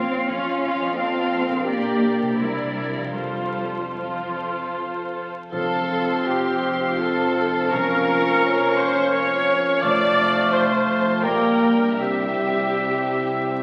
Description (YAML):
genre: classical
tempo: 75-88 BPM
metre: 3/4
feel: rubato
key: F major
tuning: A4 = 440 Hz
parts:
  - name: warm studio violin section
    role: melody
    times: 0.0-13.6 s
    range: C5 to Db6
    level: -33 LUFS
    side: equal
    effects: none
  - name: rich studio violin section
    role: second line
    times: 0.0-13.6 s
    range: G4 to D5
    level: -30 LUFS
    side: equal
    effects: none
  - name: warm studio viola section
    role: accompaniment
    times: 0.0-13.6 s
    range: E4 to D5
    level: -28 LUFS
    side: equal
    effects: none
  - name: concert harp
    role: arpeggios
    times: 0.0-13.6 s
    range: F2 to D5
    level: -32 LUFS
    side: equal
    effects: none
  - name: dark studio cello section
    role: bass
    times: 0.0-13.6 s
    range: F2 to Db4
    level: -30 LUFS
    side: equal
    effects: none
  - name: dark studio double bass section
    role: bass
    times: 0.0-13.6 s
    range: F1 to F2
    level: -42 LUFS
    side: equal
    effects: none
  - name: bright clarinet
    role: second line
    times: 5.5-13.6 s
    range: A3 to Db4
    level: -29 LUFS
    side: equal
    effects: none
  - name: bright oboe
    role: second line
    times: 5.5-13.6 s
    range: D5 to F5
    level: -29 LUFS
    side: equal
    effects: none
  - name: mellow bassoon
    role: accompaniment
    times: 5.5-13.6 s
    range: F3 to G3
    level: -31 LUFS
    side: equal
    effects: none
  - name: dark French horn section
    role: sustained chords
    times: 5.5-13.6 s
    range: A3 to G4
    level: -34 LUFS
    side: equal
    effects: none
  - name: timpani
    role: percussion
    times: 5.5-10.8 s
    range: F2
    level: -42 LUFS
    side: equal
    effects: none
room: wet recital hall reverb, RT60 1.4 s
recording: very old 78 rpm record, vinyl crackle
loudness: -22 LUFS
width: mono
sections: 0.0-5.5 A section; 5.5-13.6 A section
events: none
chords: 0.0 Bbm/F; 1.0 F; 1.7 Gm/Bb; 2.4 C9; 3.2 F; 7.7 Bbm/F; 9.8 F; 11.2 Gm/Bb; 12.0 C